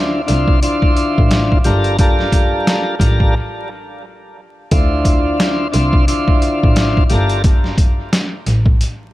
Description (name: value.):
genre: hip hop, boom-bap hip-hop.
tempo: 88 BPM.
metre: 4/4.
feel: swing 58% on 16ths.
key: D minor.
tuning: A4 = 439 Hz.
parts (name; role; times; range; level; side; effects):
tonewheel organ; accompaniment; 0.0-7.4 s; D3 to C5; -18 LUFS; left 1 dB; slow rotary speaker, cassette tape, high-pass filter, low-pass filter, analog delay.
rich double bass; bass; 0.3-8.7 s; G1 to D2; -18 LUFS; equal; none.
trip hop sampler-style drum kit; drums; 0.3-9.0 s; hi-hat, kick drum, snare drum; -14 LUFS; equal; none.
room: digital ambience.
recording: echo-heavy mix, vinyl crackle.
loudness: -12 LUFS.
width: side -16 dB against mid.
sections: 0.0-4.7 A section; 4.7-9.1 B section.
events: break 3.4-4.7, 7.4-9.1.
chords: 0.0 Dm9; 1.6 Gm9; 4.7 Dm9; 7.1 Gm9.